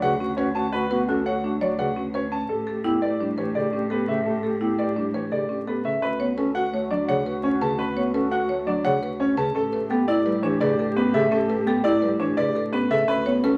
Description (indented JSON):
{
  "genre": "classical, minimalist pattern music",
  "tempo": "170 BPM",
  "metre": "5/4",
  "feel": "straight",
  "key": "A mixolydian",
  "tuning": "A4 = 440 Hz",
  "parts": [
    { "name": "clear baby grand piano", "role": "melody", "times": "0.0-13.6 s", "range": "G4 to A5", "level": "-29 LUFS", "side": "equal", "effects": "none" },
    { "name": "alto flute", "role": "second line", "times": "0.0-13.6 s", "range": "F#4 to G4", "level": "-34 LUFS", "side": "equal", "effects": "none" },
    { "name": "dark bass clarinet", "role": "accompaniment", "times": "0.0-13.6 s", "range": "C#3 to C#4", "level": "-30 LUFS", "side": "equal", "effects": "none" },
    { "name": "buzzing marimba with hard mallets", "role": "arpeggios", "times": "0.0-13.6 s", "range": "C#4 to C#5", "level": "-29 LUFS", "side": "equal", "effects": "none" },
    { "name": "rich cello", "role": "bass", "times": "0.0-13.6 s", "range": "D2 to A2", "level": "-33 LUFS", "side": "equal", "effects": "none" }
  ],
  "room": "moderate large studio reverb, RT60 0.8 s",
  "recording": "vinyl crackle",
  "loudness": "-24 LUFS",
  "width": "mono",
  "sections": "0.0-6.0 A section; 6.0-13.6 A section",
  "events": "none",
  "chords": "0.0 D6; 2.5 A9sus4; 6.0 D6; 9.6 A9sus4"
}